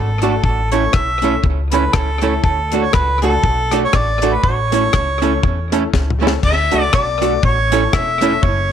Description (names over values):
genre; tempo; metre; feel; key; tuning
ska; 120 BPM; 4/4; swing 57% on 8ths; A major; A4 = 440 Hz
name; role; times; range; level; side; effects
mellow harmonica; melody; 0.0-8.7 s; A4 to E5; -18 LUFS; right 1 dB; none
upright bass; bass; 0.0-8.7 s; E1 to E2; -20 LUFS; equal; none
archtop guitar, miked and amplified; accompaniment; 0.2-8.3 s; A3 to A4; -21 LUFS; right 10 dB; tape echo
warm upright piano; stabs; 0.2-8.4 s; A3 to A4; -25 LUFS; left 13 dB; none
deep reggae drum kit; drums; 0.2-8.6 s; crash cymbal, hi-hat, kick drum, rim click, snare drum, toms; -18 LUFS; left 2 dB; tape echo
room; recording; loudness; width
light reverb; 1960s-style stereo with parts hard left and right; -13 LUFS; side -9 dB against mid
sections
0.0-6.4 A section; 6.4-8.7 B section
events
drum fill 5.9-6.4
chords
0.4 A; 2.4 D; 4.4 A; 6.4 D; 7.4 A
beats
| 0.44 0.94 1.44 1.94 | 2.44 2.94 3.44 3.93 | 4.43 4.93 5.43 5.93 | 6.43 6.93 7.43 7.93 | 8.43